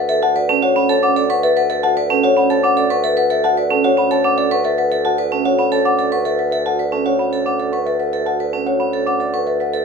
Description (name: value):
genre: classical, minimalist pattern music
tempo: 112 BPM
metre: 3/4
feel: straight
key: D major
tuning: A4 = 438 Hz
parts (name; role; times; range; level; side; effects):
- marimba with soft mallets; melody; 0.0-9.8 s; A4 to F#5; -18 LUFS; left 5 dB; none
- vibraphone with hard mallets; arpeggios; 0.0-9.8 s; C#4 to B4; -20 LUFS; right 8 dB; none
- mellow bassoon; bass; 0.0-9.8 s; D2; -23 LUFS; right 3 dB; none
- small celesta; arpeggios; 0.1-9.8 s; E5 to D6; -23 LUFS; right 2 dB; none
room: light reverb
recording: minimal, uncompressed stereo recording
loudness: -14 LUFS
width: side -5 dB against mid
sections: 0.0-9.8 A section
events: none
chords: 0.0 Dmaj9